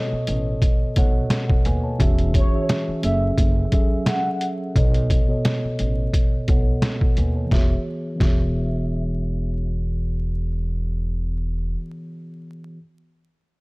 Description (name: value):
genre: hip hop, boom-bap hip-hop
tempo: 87 BPM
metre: 4/4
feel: swing 55% on 16ths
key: E major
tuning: A4 = 440 Hz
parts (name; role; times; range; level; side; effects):
- mellow tine electric piano; accompaniment; 0.0-12.8 s; B2 to A5; -26 LUFS; equal; slow stereo tremolo, cassette tape, high-pass filter, low-pass filter
- upright bass; bass; 0.1-11.7 s; E1 to D#2; -24 LUFS; equal; none
- trip hop sampler-style drum kit; drums; 0.3-8.4 s; hi-hat, kick drum, snare drum; -19 LUFS; equal; none
- rich studio violin section; melody; 2.4-9.5 s; C#5 to F#5; -28 LUFS; equal; high-pass filter, low-pass filter
room: small room reverb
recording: dry, gritty hardware recording, vinyl crackle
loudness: -19 LUFS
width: side -26 dB against mid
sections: 0.0-7.5 A section; 7.5-10.3 B section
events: filter sweep 0.0-7.5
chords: 0.0 B7; 2.0 E6; 3.0 F#m7; 4.8 B7; 7.5 E6